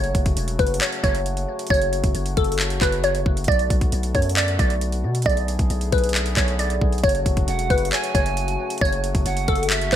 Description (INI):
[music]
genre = hip hop, trap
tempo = 135 BPM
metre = 4/4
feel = half-time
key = F# minor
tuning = A4 = 440 Hz
[part]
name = glassy wavetable pluck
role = melody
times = 0.0-10.0 s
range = A4 to D5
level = -24 LUFS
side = equal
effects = chorus, low-pass filter, ping-pong delay
[part]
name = mellow accordion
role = sustained chords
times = 0.0-10.0 s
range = C#3 to G#4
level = -31 LUFS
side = left 4 dB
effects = none
[part]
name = long sustained 808-style bass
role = bass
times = 0.0-10.0 s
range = E1 to B2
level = -24 LUFS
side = equal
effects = none
[part]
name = trap drum kit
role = drums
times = 0.0-10.0 s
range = handclaps, hi-hat, kick drum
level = -22 LUFS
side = equal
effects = gated reverb
[part]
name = polished pan flute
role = second line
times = 7.5-10.0 s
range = E5 to G#5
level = -28 LUFS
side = right 8 dB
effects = ping-pong delay
[sound]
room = little or no reverb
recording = bright 1980s-style digital production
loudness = -19 LUFS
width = side -10 dB against mid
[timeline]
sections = 0.0-10.0 A section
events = none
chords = 0.0 F#m; 3.5 Bm7; 7.0 F#madd9